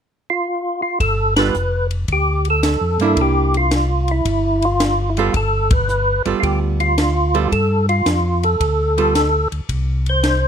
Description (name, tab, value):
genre	soul jazz organ trio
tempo	110 BPM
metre	4/4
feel	swing 68% on 8ths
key	G mixolydian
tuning	A4 = 440 Hz
part	percussive tonewheel organ	melody	0.3-10.5 s	E4 to C5	-18 LUFS	equal	slow rotary speaker, chorus vibrato
part	mellow tonewheel organ	bass	1.0-10.5 s	F1 to G2	-19 LUFS	equal	overdrive, chorus vibrato, slow rotary speaker
part	compact cocktail drum kit	drums	1.0-10.4 s	hi-hat, kick drum, ride cymbal, snare drum	-21 LUFS	equal	none
part	archtop guitar, miked and amplified	accompaniment	1.4-9.1 s	G3 to A4	-20 LUFS	right 8 dB	none
room	little or no reverb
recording	close, detailed microphones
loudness	-15 LUFS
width	side -8 dB against mid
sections	0.0-1.0 A section; 1.0-10.5 B section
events	band accent 1.3, 5.6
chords	0.0 N.C.; 1.0 G9; 3.2 C9; 5.3 G9; 9.7 N.C.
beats	0.46 | 1.00 1.54 2.08 2.63 | 3.17 3.71 4.26 4.80 | 5.34 5.89 6.43 6.97 | 7.52 8.06 8.60 9.15 | 9.69 10.23